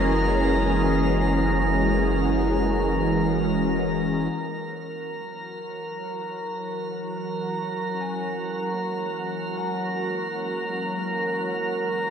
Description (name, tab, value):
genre	ambient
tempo	free time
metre	none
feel	none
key	F# mixolydian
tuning	A4 = 437 Hz
part	evolving wavetable pad	sustained chords	0.0-12.1 s	E3 to A#4	-26 LUFS	right 1 dB	phaser, built-in reverb
part	barky tine electric piano	arpeggios	0.0-12.1 s	A#3 to G#5	-37 LUFS	left 2 dB	none
part	warm sub bass	bass	0.0-4.3 s	F#1	-28 LUFS	left 1 dB	none
part	organ-like drone	drone	2.6-12.1 s	F#3 to F#4	-34 LUFS	equal	ensemble chorus, built-in reverb
part	drifting glass-harmonics texture	texture	0.0-12.1 s	A#4 to A#5	-28 LUFS	right 1 dB	chorus, built-in reverb
room	wet lush hall reverb, RT60 2.8 s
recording	dreamy mix soaked in reverb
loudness	-23 LUFS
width	side -7 dB against mid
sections	0.0-4.3 A section; 4.3-12.1 B section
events	fade-in on ambient pad 4.3-12.1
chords	0.0 F#9